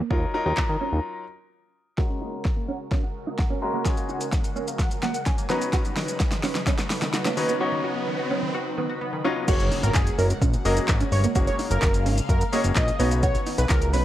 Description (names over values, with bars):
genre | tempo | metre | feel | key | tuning
dance-pop | 128 BPM | 4/4 | straight | F# major | A4 = 440 Hz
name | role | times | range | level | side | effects
mellow electric guitar | riff | 0.0-14.0 s | A#3 to F#4 | -31 LUFS | right 6 dB | ensemble chorus, low-pass filter
bright grand piano | accompaniment | 0.1-13.8 s | F#3 to A#5 | -29 LUFS | left 3 dB | sidechain pumping, low-pass filter
fat analog bass | bass | 0.1-1.0, 9.5-14.0 s | F#1 to D#3 | -24 LUFS | equal | sidechain pumping
deep house drum kit | drums | 0.1-14.0 s | crash cymbal, handclaps, hi-hat, kick drum, shaker, snare drum | -24 LUFS | equal | none
airy breathy pad | sustained chords | 2.0-14.0 s | C#3 to E#5 | -33 LUFS | equal | chorus, phaser, sidechain pumping, low-pass filter
tight sequenced synth | arpeggios | 2.0-9.5 s | D#3 to F#5 | -35 LUFS | left 1 dB | chorus, phaser, sidechain pumping, low-pass filter, slapback echo
riser and impact | sound effects | 4.7-11.4 s | none | -36 LUFS | right 1 dB | none
wide unison lead | melody | 9.5-14.0 s | G#4 to D#5 | -28 LUFS | right 1 dB | sidechain pumping, slapback echo
room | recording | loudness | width
light reverb, digital ambience | none | -22 LUFS | side -13 dB against mid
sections
0.0-2.0 A section; 2.0-9.5 B section; 9.5-14.0 C section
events
break 1.0-2.0; build-up 2.0-9.5; drum fill 2.0-7.6; filter sweep 2.0-9.5; riser 4.7-9.5; grand piano fill 4.8-5.7; drop 9.5-14.0; impact 9.5-11.4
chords
0.0 D#madd9; 2.0 F#add9; 5.5 Badd9; 9.5 F#add9; 13.0 Badd9